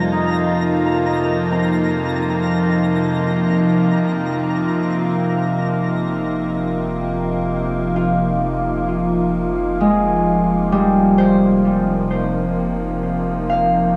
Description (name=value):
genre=ambient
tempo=65 BPM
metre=3/4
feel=straight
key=F minor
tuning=A4 = 440 Hz
part: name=evolving wavetable pad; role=sustained chords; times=0.0-14.0 s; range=F2 to F4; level=-20 LUFS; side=equal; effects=chorus, built-in reverb
part: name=concert harp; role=arpeggios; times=0.0-14.0 s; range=G3 to F5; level=-22 LUFS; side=equal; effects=tape echo, plate reverb
part: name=analog drone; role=drone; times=0.0-5.3 s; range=none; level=barely audible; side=none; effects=none
part: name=twinkling granular texture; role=texture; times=0.0-5.2 s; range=Bb5 to Bb6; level=-32 LUFS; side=equal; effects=built-in reverb
part: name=warm sub bass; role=bass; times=5.2-14.0 s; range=F1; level=-33 LUFS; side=equal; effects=none
room=wet booth ambience, RT60 0.2 s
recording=home recording on cassette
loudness=-18 LUFS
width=mono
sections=0.0-5.2 A section; 5.2-14.0 B section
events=none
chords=0.0 Ebadd9/F; 5.2 Fm7